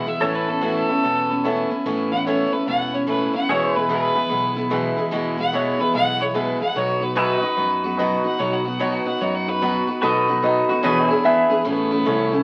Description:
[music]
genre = honky-tonk and classic country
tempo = 147 BPM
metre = 4/4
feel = swing 64% on 8ths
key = A lydian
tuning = A4 = 443 Hz
[part]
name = clear fiddle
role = melody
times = 0.0-12.4 s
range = B3 to F#5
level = -26 LUFS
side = equal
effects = none
[part]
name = picked steel-string acoustic guitar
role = accompaniment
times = 0.0-12.4 s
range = E2 to G#4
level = -25 LUFS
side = equal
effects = none
[part]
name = warm grand piano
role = accompaniment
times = 0.0-12.4 s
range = E4 to E5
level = -31 LUFS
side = equal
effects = none
[part]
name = pedal steel guitar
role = sustained chords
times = 0.0-11.7 s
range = F#4 to E5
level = -27 LUFS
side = equal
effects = none
[part]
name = fingered electric bass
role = bass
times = 0.2-12.4 s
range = E1 to F#2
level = -34 LUFS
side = equal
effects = none
[part]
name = lap resonator guitar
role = second line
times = 10.0-11.6 s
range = F#4 to E5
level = -24 LUFS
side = equal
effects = none
[sound]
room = wet club reverb, RT60 0.7 s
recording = very old 78 rpm record, vinyl crackle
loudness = -21 LUFS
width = mono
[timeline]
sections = 0.0-10.0 A section; 10.0-11.7 B section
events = fiddle solo 0.0-10.0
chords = 0.2 Aadd9; 3.5 E; 6.8 B; 10.8 E7; 11.7 A

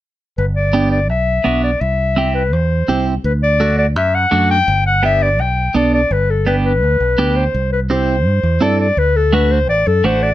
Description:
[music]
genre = latin, cumbia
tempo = 168 BPM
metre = 4/4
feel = straight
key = G major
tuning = A4 = 439 Hz
[part]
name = clear clarinet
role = melody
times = 0.4-10.3 s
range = A4 to G5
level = -16 LUFS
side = left 2 dB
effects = none
[part]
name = fingered electric bass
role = bass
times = 0.4-10.3 s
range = G1 to G2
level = -17 LUFS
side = equal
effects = none
[part]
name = clean electric guitar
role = accompaniment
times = 0.7-10.3 s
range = A3 to A4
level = -17 LUFS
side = right 3 dB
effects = phaser
[sound]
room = light reverb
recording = close, detailed microphones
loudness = -13 LUFS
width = side -14 dB against mid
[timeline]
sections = 0.4-6.1 A section; 6.1-10.3 B section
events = none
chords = 0.4 G; 1.8 C; 3.2 D; 4.7 G; 7.5 C; 9.0 D

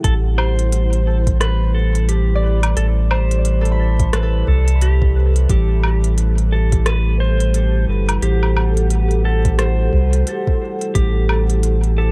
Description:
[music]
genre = ambient dub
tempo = 88 BPM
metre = 4/4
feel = swing 60% on 16ths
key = A dorian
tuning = A4 = 440 Hz
[part]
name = clean lap steel guitar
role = melody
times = 0.0-12.1 s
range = G4 to C5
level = -28 LUFS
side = equal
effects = dub echo
[part]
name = deep dark ambient pad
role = sustained chords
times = 0.0-12.1 s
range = C4 to F#5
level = -28 LUFS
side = equal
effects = chorus, built-in reverb
[part]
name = warm sub bass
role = bass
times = 0.0-12.1 s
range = G1 to C2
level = -18 LUFS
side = equal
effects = tube saturation
[part]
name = electronic kick drum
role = drums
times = 0.0-11.1 s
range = none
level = -20 LUFS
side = equal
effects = none
[part]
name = organic electronic drum kit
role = drums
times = 0.0-11.9 s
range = hi-hat, rim click, woodblock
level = -27 LUFS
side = equal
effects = none
[part]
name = concert harp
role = arpeggios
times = 2.4-6.4 s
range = A4 to B5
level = -33 LUFS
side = equal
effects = dub echo
[sound]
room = little or no reverb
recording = none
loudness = -17 LUFS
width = mono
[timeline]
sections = 0.0-12.1 A section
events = none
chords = 0.0 Am7

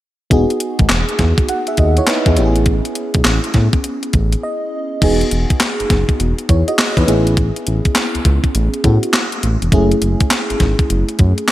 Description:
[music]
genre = R&B, new jack swing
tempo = 102 BPM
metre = 4/4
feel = swing 64% on 16ths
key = E major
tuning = A4 = 440 Hz
[part]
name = FM electric piano with soft pad layer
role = accompaniment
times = 0.3-11.5 s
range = A3 to F#5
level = -19 LUFS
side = equal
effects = chorus, tremolo
[part]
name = smooth synth bass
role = bass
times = 0.3-11.3 s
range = E1 to A2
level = -16 LUFS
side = equal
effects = none
[part]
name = clean 12-bit digital drum machine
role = drums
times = 0.3-11.5 s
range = crash cymbal, handclaps, hi-hat, kick drum, snare drum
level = -16 LUFS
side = equal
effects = overdrive, gated reverb
[sound]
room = light reverb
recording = bright 1980s-style digital production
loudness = -13 LUFS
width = side -15 dB against mid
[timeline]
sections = 0.3-5.0 A section; 5.0-11.5 B section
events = FM electric piano fill 4.1-5.0; break 4.4-5.0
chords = 0.3 Emaj9; 2.4 Amaj7; 5.0 Emaj9; 7.1 Amaj7; 9.7 F#m7

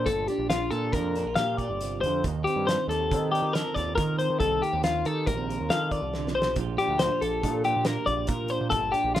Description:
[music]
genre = math rock and midwest emo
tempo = 139 BPM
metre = 5/4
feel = straight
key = Bb major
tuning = A4 = 438 Hz
[part]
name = twelve-string electric guitar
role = accompaniment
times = 0.0-9.2 s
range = Bb2 to A4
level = -32 LUFS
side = right 10 dB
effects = warbly pitch drift
[part]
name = twelve-string electric guitar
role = arpeggios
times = 0.0-9.2 s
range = F4 to F5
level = -26 LUFS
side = left 4 dB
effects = none
[part]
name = growling picked electric bass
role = bass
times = 0.0-9.2 s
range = G1 to Eb3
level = -32 LUFS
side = right 1 dB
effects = overdrive
[part]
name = loose indie drum kit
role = drums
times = 0.1-9.2 s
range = hi-hat, kick drum, snare drum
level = -32 LUFS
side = right 1 dB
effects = none
[sound]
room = light reverb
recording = rough home demo mix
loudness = -24 LUFS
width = side -12 dB against mid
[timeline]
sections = 0.0-9.2 A section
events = drum fill 6.1-6.6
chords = 0.0 Bb69; 2.2 Eb69; 6.6 Bb69

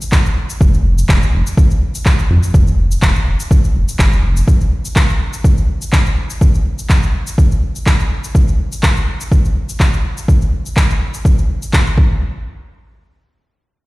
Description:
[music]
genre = afro house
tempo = 124 BPM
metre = 4/4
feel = straight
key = F minor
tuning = A4 = 440 Hz
[part]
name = electronic cabasa and handclaps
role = drums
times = 0.0-12.0 s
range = none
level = -22 LUFS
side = equal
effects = studio reverb
[part]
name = electronic kick drum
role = drums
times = 0.1-12.1 s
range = none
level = -12 LUFS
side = equal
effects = studio reverb
[part]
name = round analog bass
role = bass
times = 0.6-4.4 s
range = F1 to F2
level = -14 LUFS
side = equal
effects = sidechain pumping
[sound]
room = little or no reverb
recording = played on a big sound system in a bare room, stone room reverb, lossy compression artefacts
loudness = -12 LUFS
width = side -20 dB against mid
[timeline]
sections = 0.0-12.2 A section; 12.2-13.9 B section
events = none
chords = none

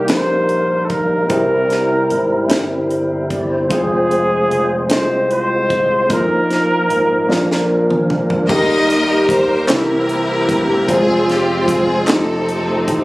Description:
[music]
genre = slow gospel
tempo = 50 BPM (dotted quarters)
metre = 6/8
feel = straight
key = Eb major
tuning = A4 = 440 Hz
[part]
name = warm trumpet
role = melody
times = 0.0-7.7 s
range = Ab4 to C5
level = -17 LUFS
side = equal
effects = none
[part]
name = warm upright piano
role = accompaniment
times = 0.0-13.0 s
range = Bb2 to Eb5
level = -20 LUFS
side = left 1 dB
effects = none
[part]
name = tonewheel organ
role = sustained chords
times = 0.0-13.0 s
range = E3 to D5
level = -19 LUFS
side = right 1 dB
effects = slow rotary speaker, overdrive, chorus vibrato
[part]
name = modern bright picked electric bass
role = bass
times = 0.0-13.0 s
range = E1 to Eb2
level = -24 LUFS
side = equal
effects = none
[part]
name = tight funk drum kit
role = drums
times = 0.1-13.0 s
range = crash cymbal, hi-hat, kick drum, snare drum, toms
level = -20 LUFS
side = equal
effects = none
[part]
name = clear studio string section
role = melody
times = 8.5-13.0 s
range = C4 to Eb5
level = -16 LUFS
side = left 1 dB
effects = none
[part]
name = group handclap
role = percussion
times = 9.7-12.4 s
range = none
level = -23 LUFS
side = equal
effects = none
[sound]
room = light reverb, small room ambience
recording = recorded on a phone in the room, club reverb, compression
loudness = -13 LUFS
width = side -19 dB against mid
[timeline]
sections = 0.0-8.5 A section; 8.5-13.0 B section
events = drum fill 7.3-8.5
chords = 0.0 Eb; 1.3 C7; 3.7 Fm; 6.1 Bbsus4; 7.3 Bb; 8.5 Eb; 9.7 C7; 10.9 Fm; 12.1 F9

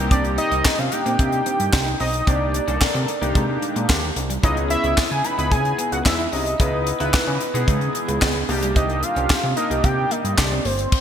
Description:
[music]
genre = early-eighties boogie funk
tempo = 111 BPM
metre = 4/4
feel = straight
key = unclear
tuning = A4 = 442 Hz
[part]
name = chorused polysynth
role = accompaniment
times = 0.0-10.5 s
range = Bb3 to B4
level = -26 LUFS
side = left 1 dB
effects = none
[part]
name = electric guitar at the edge of break-up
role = riff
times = 0.0-10.8 s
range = G3 to E4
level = -31 LUFS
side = right 2 dB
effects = lush chorus
[part]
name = fat analog bass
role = bass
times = 0.0-10.9 s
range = G1 to C#3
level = -25 LUFS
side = equal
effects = none
[part]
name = fat analog lead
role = melody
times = 0.1-11.0 s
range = C5 to B5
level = -24 LUFS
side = right 1 dB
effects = chorus
[part]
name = tight funk drum kit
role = drums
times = 0.1-11.0 s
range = crash cymbal, handclaps, hi-hat, kick drum, snare drum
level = -21 LUFS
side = equal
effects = gated reverb
[sound]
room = moderate lush hall reverb, RT60 2.4 s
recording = bright 1980s-style digital production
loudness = -18 LUFS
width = side -9 dB against mid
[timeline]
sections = 0.0-11.0 A section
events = none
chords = 0.0 Cm9; 4.4 C#m9; 8.5 Cm9

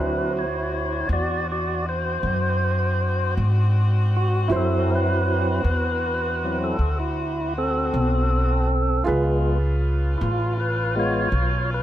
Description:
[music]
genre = blues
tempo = 53 BPM (dotted quarters)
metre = 12/8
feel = straight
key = unclear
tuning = A4 = 440 Hz
[part]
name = warm upright piano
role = accompaniment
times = 0.0-11.8 s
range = E4 to C5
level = -29 LUFS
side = right 4 dB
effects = none
[part]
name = tonewheel organ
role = sustained chords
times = 0.0-11.8 s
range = F#3 to D5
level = -24 LUFS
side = equal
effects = slow rotary speaker
[part]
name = warm saxophone section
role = sustained chords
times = 0.0-11.8 s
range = B3 to F#4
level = -33 LUFS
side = left 2 dB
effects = none
[part]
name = upright bass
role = bass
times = 0.0-11.8 s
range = A1 to G#2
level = -22 LUFS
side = equal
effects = none
[sound]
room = little or no reverb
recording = none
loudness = -20 LUFS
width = side -12 dB against mid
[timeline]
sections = 0.0-11.8 A section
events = tonewheel organ solo 0.0-11.8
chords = 0.0 D7; 9.1 C#7

